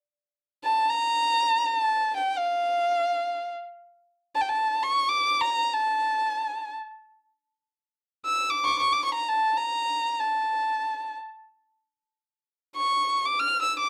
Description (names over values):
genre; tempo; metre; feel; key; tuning
Arabic maqam ensemble; free time; none; none; unclear; A4 = 439 Hz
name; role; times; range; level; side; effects
warm violin; solo; 0.6-13.9 s; F5 to F6; -26 LUFS; equal; slapback echo
room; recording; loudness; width
light reverb; dry, close 1970s-style studio recording; -26 LUFS; mono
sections
0.0-13.9 A section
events
none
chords
none